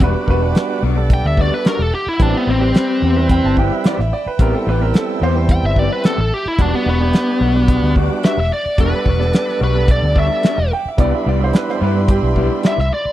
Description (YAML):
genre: straight-eighth soul blues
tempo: 109 BPM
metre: 4/4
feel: straight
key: E minor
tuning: A4 = 440 Hz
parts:
  - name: bright upright piano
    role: second line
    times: 0.0-5.5, 10.7-12.5 s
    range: G4 to A5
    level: -23 LUFS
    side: right 5 dB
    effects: none
  - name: tonewheel organ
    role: accompaniment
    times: 0.0-12.8 s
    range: G3 to B4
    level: -22 LUFS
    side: right 4 dB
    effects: slow rotary speaker, overdrive
  - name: clear studio string section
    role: sustained chords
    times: 0.0-13.1 s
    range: E5 to D6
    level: -33 LUFS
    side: left 2 dB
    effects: none
  - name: electric guitar through a small old amp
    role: stabs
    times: 0.0-13.0 s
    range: E3 to G4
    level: -25 LUFS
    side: left 5 dB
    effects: wide subtle chorus, slapback echo
  - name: vintage muted fingered electric bass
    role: bass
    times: 0.0-13.1 s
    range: E1 to G2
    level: -17 LUFS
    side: equal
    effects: none
  - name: cloth-damped thuddy drum kit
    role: drums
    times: 0.0-12.9 s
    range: hi-hat, kick drum, snare drum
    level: -15 LUFS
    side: equal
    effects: none
  - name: biting lead guitar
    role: melody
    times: 1.1-13.1 s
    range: B3 to G5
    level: -19 LUFS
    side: left 1 dB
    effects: overdrive
room: small room ambience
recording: dry, close 1970s-style studio recording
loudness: -13 LUFS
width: side -14 dB against mid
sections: 0.0-13.1 A section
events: none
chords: 0.0 Em9; 2.2 Am9; 6.6 Em9; 11.0 Cmaj7